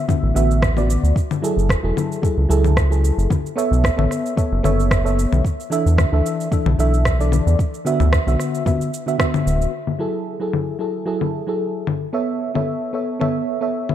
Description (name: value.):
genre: sunset chillout.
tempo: 112 BPM.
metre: 4/4.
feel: swing 54% on 16ths.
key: F# minor.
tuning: A4 = 440 Hz.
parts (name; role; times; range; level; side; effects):
mellow FM electric piano; accompaniment; 0.0-13.9 s; D3 to E5; -21 LUFS; moving between left 4 dB and right 4 dB; chorus, auto-pan, ping-pong delay.
electronic congas, cabasa and rim click; drums; 0.1-13.9 s; none; -24 LUFS; left 4 dB; low-pass filter on perc, studio ambience, low-pass filter on snare.
electronic kick drum; drums; 0.1-9.3 s; none; -20 LUFS; equal; studio ambience.
round analog bass; bass; 0.2-9.7 s; D1 to E2; -17 LUFS; equal; none.
room: light reverb, digital ambience.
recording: dark, warm production.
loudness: -17 LUFS.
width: side -11 dB against mid.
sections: 0.0-9.7 A section; 9.7-13.9 B section.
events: filter sweep on drum 9.7-13.9.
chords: 0.0 D69; 1.2 F#m9; 3.3 B9sus4; 5.4 E7sus4; 7.6 D69; 9.7 F#m9; 11.9 B9sus4.